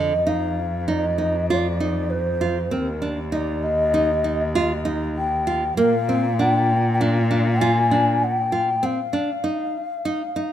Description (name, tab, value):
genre	contemporary instrumental, chamber music in an uneven meter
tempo	98 BPM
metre	5/4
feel	straight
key	F dorian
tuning	A4 = 439 Hz
part	mellow hollow long shakuhachi	melody	0.0-10.5 s	Bb4 to Ab5	-23 LUFS	left 2 dB	none
part	nylon-string guitar	arpeggios	0.0-10.5 s	D3 to F4	-24 LUFS	right 2 dB	none
part	rich cello	bass	0.0-8.8 s	Eb2 to Bb2	-24 LUFS	equal	none
room	light reverb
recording	close, detailed microphones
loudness	-19 LUFS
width	side -10 dB against mid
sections	0.0-10.5 A section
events	break 8.8-10.5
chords	0.0 F5; 2.7 N.C.; 5.8 Bb7; 8.8 F5